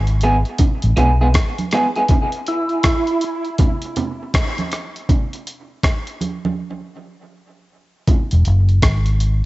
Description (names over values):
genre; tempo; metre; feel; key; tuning
dub reggae; 80 BPM; 4/4; swing 63% on 16ths; E major; A4 = 443 Hz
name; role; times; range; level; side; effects
vintage muted fingered electric bass; bass; 0.0-1.3, 8.3-9.4 s; E1 to B1; -14 LUFS; equal; transformer saturation
breakbeat sampler-style drum kit; drums; 0.1-9.4 s; hi-hat, kick drum, rim click; -18 LUFS; equal; cassette tape
electric guitar at the edge of break-up; accompaniment; 0.2-2.0 s; G#3 to G#4; -20 LUFS; right 1 dB; cassette tape, dub echo
congas; percussion; 0.6-8.3 s; none; -25 LUFS; right 4 dB; dub echo
percussive tonewheel organ; melody; 2.5-3.2 s; E4; -22 LUFS; right 2 dB; overdrive, chorus vibrato, slow rotary speaker, cassette tape, dub echo
room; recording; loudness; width
digital ambience; home recording on cassette, nothing above 7.9 kHz; -16 LUFS; side -19 dB against mid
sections
0.0-9.5 A section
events
break 0.0-8.1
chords
0.0 E; 2.1 N.C.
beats
0.60 1.34 | 2.09 2.84 3.59 4.33 | 5.08 5.83 6.58 7.33 | 8.07 8.82